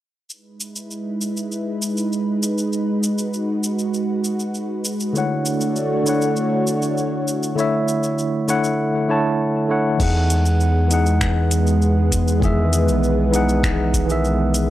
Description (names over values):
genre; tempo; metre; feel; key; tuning
sunset chillout; 99 BPM; 4/4; straight; E major; A4 = 440 Hz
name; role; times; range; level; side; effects
lush unison pad; sustained chords; 0.3-14.7 s; G#3 to C#5; -22 LUFS; right 1 dB; chorus
smooth R&B drum kit; drums; 0.3-14.7 s; crash cymbal, finger snaps, hi-hat, shaker; -27 LUFS; equal; studio reverb
tine electric piano; accompaniment; 5.1-14.7 s; D3 to A5; -20 LUFS; equal; slow stereo tremolo, auto-pan, tape echo
round analog bass; bass; 10.0-14.7 s; B1 to E2; -19 LUFS; equal; transformer saturation
electronic kick drum; drums; 10.0-14.1 s; none; -22 LUFS; equal; studio reverb
room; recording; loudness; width
light reverb; dry, gritty hardware recording, cassette tape; -17 LUFS; side -14 dB against mid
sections
0.3-10.0 A section; 10.0-14.7 B section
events
filter sweep on analog synth pad 0.3-10.0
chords
0.3 Emaj7; 5.2 Dmaj7; 10.0 Emaj7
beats
| 0.30 0.91 1.52 2.12 | 2.73 3.33 3.94 4.55 | 5.15 5.76 6.37 6.97 | 7.58 8.18 8.79 9.40 | 10.00 10.61 11.21 11.82 | 12.43 13.03 13.64 14.24